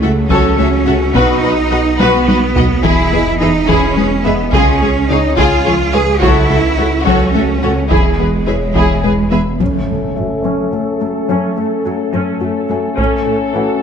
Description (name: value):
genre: cinematic, hybrid orchestral and electronic film score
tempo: 71 BPM (dotted quarters)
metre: 6/8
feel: straight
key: F# dorian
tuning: A4 = 441 Hz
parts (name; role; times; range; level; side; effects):
- warm symphonic violin section; second line; 0.0-9.4 s; E4 to F#5; -19 LUFS; left 2 dB; none
- clear symphonic viola section; accompaniment; 0.0-13.8 s; E3 to B4; -18 LUFS; right 1 dB; low-pass filter
- analog pluck; arpeggios; 0.0-13.7 s; C#3 to B4; -20 LUFS; left 4 dB; chorus, low-pass filter, ping-pong delay
- phased detuned saw bass; bass; 0.0-9.6 s; E1 to C#2; -19 LUFS; equal; phaser
- rich symphonic cello section; bass; 0.0-13.6 s; F#2 to G#4; -18 LUFS; right 4 dB; none
- rich symphonic double bass section; bass; 0.0-9.4 s; B1 to E2; -21 LUFS; right 3 dB; none
- felt-muted upright piano; texture; 0.0-13.8 s; G#3 to E6; -26 LUFS; left 4 dB; ping-pong delay
- solo taiko drums; drums; 0.3-13.8 s; none; -19 LUFS; equal; none
- mellow French horn section; sustained chords; 9.6-13.8 s; A3 to C#4; -19 LUFS; left 5 dB; low-pass filter
- impact; sound effects; 9.6-11.3 s; none; -24 LUFS; equal; none
room: wet scoring stage reverb, RT60 1.6 s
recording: none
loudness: -11 LUFS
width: side -7 dB against mid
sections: 0.0-9.6 A section; 9.6-13.8 B section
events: drum fill 2.0-2.8; impact 9.6-11.3; filter sweep 9.6-13.8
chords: 0.0 F#m7/C#; 1.2 B; 2.8 E; 4.5 C#; 6.2 F#m7/C#; 7.9 E; 9.6 F#m; 13.0 A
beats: 0.31 | 1.15 2.00 | 2.84 3.69 | 4.53 5.38 | 6.22 7.07 | 7.91 8.76 | 9.60 10.45 | 11.29 12.14 | 12.98